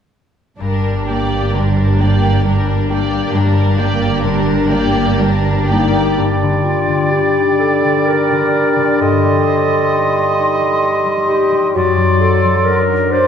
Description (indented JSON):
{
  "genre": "classical",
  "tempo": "43 BPM (dotted quarters)",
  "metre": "6/8",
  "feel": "uneven beats, rubato",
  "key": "G minor",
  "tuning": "A4 = 441 Hz",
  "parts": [
    { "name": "rich symphonic violin section", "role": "melody", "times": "0.6-6.2 s", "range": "Bb4 to D5", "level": "-24 LUFS", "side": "left 2 dB", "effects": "none" },
    { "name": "warm symphonic violin section", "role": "second line", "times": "0.6-6.2 s", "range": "D4 to G4", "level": "-22 LUFS", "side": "right 1 dB", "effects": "none" },
    { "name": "warm symphonic viola section", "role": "accompaniment", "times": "0.6-6.2 s", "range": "G3 to Bb3", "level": "-21 LUFS", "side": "equal", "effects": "none" },
    { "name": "concert harp", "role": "arpeggios", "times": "0.6-13.3 s", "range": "F#2 to C5", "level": "-18 LUFS", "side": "left 4 dB", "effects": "none" },
    { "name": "rich symphonic double bass section", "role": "bass", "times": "0.6-5.9 s", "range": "G1", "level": "-19 LUFS", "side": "right 2 dB", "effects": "none" },
    { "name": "warm symphonic cello section", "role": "bass", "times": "0.6-5.9 s", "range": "G2", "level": "-20 LUFS", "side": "right 2 dB", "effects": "none" },
    { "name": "mellow clarinet", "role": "second line", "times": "5.7-13.3 s", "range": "D4 to C5", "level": "-17 LUFS", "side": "left 1 dB", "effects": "none" },
    { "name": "bright oboe", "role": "second line", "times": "6.2-13.3 s", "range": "D5 to Eb5", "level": "-19 LUFS", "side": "right 2 dB", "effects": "none" },
    { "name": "mellow hollow concert flute", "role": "second line", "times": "6.2-13.3 s", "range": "G5 to C6", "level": "-21 LUFS", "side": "equal", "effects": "none" },
    { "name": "warm bassoon", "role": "accompaniment", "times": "6.2-13.3 s", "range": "F#3 to G3", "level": "-19 LUFS", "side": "right 3 dB", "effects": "none" }
  ],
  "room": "wet concert hall reverb, RT60 2.1 s",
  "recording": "heard from further back in the room",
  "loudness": "-12 LUFS",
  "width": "side -8 dB against mid",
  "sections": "0.6-6.2 A section; 6.2-13.3 B section",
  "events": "none",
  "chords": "0.6 Gm; 9.0 Am7b5/G; 11.8 D7/F#"
}